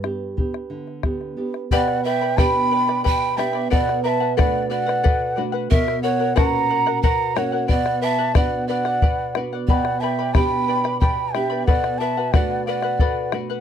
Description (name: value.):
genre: andean folk, Andean ensemble.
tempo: 60 BPM (dotted quarters).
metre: 6/8.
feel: straight.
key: unclear.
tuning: A4 = 440 Hz.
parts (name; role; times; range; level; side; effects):
nylon-string guitar; accompaniment; 0.0-13.6 s; G2 to G4; -26 LUFS; right 4 dB; none.
bombo; percussion; 0.0-13.5 s; none; -19 LUFS; left 1 dB; none.
breathy reedy large quena; melody; 1.7-13.4 s; E5 to B5; -23 LUFS; right 1 dB; none.
breathy hollow pan flute; second line; 1.7-13.4 s; A#4 to G5; -27 LUFS; right 13 dB; none.
charango; accompaniment; 1.7-13.6 s; F#4 to B5; -26 LUFS; left 12 dB; none.
room: light reverb.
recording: dry, close 1970s-style studio recording.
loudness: -18 LUFS.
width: side -9 dB against mid.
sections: 0.0-1.7 A section; 1.7-13.6 B section.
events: charango solo 0.0-1.7.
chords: 0.0 G; 1.7 G/B; 3.7 D/B; 5.7 F#; 7.7 Bm; 9.7 G/B; 11.7 D/B.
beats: 0.71 | 1.72 2.72 | 3.72 4.71 | 5.71 6.70 | 7.70 8.69 | 9.69 10.68 | 11.68 12.67.